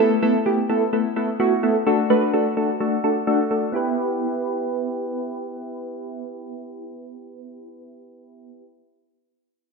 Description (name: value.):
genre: pop.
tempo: 128 BPM.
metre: 4/4.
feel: straight.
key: E minor.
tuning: A4 = 442 Hz.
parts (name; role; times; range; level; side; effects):
soft electric-piano-like synth keys; accompaniment; 0.0-8.7 s; A3 to B4; -20 LUFS; equal; chorus, phaser, low-pass filter.
room: moderate plate reverb, RT60 1.9 s.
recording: bright 1980s-style digital production.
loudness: -19 LUFS.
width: side -3 dB against mid.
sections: 0.0-3.7 A section; 3.7-7.5 B section.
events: filter sweep on synth keys 0.0-3.7.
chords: 0.0 Asus2; 1.9 D; 3.7 Em.